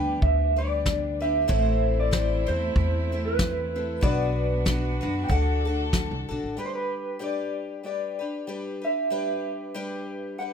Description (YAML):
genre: acoustic folk duo or small band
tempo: 94 BPM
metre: 4/4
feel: swing 56% on 8ths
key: G major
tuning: A4 = 441 Hz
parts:
  - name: electric guitar through a small old amp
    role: melody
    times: 0.0-10.5 s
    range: B4 to G5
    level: -28 LUFS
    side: right 1 dB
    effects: tremolo
  - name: picked twelve-string acoustic guitar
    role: accompaniment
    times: 0.0-10.5 s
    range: A2 to C5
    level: -31 LUFS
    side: left 2 dB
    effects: none
  - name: warm chamber string section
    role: sustained chords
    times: 0.0-6.6 s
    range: D3 to A4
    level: -35 LUFS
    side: right 2 dB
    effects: none
  - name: upright bass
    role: bass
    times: 0.0-6.6 s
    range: A1 to F#2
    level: -26 LUFS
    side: equal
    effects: none
  - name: soft brush drum kit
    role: drums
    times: 0.2-6.1 s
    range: kick drum, snare drum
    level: -26 LUFS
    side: equal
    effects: none
room: little or no reverb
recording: close, detailed microphones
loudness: -24 LUFS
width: side -7 dB against mid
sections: 0.0-6.6 A section; 6.6-10.5 B section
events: none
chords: 0.0 G; 1.5 Am; 4.0 Bm; 5.3 D; 6.6 G